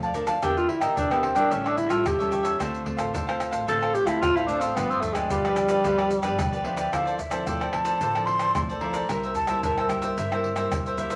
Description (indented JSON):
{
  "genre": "samba and choro",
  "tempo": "111 BPM",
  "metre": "4/4",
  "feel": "straight",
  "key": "unclear",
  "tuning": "A4 = 440 Hz",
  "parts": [
    { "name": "cavaquinho", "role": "accompaniment", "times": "0.0-11.2 s", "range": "D4 to A5", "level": "-30 LUFS", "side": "equal", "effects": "none" },
    { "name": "nylon-string guitar", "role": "accompaniment", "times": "0.0-11.2 s", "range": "F2 to G4", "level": "-36 LUFS", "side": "equal", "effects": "none" },
    { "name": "upright bass", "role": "bass", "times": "0.0-11.2 s", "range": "G1 to Bb2", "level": "-42 LUFS", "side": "equal", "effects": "none" },
    { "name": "tube shaker, pandeiro, surdo and tamborim", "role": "percussion", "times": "0.0-11.2 s", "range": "none", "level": "-34 LUFS", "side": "equal", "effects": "none" },
    { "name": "growling tenor saxophone", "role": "second line", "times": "0.4-6.8 s", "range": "G3 to A4", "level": "-27 LUFS", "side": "equal", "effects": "none" },
    { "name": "breathy baroque flute", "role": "melody", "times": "6.7-11.2 s", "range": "E5 to C6", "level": "-30 LUFS", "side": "equal", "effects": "none" }
  ],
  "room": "wet studio reverb, RT60 0.6 s",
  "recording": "vinyl crackle",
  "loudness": "-25 LUFS",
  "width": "mono",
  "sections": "0.0-6.9 A section; 6.9-11.2 B section",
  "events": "tenor saxophone solo 0.0-6.9",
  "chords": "0.4 Em7b5; 1.5 A7; 2.6 Dm7; 4.8 G7; 6.9 Dm9; 9.1 C7"
}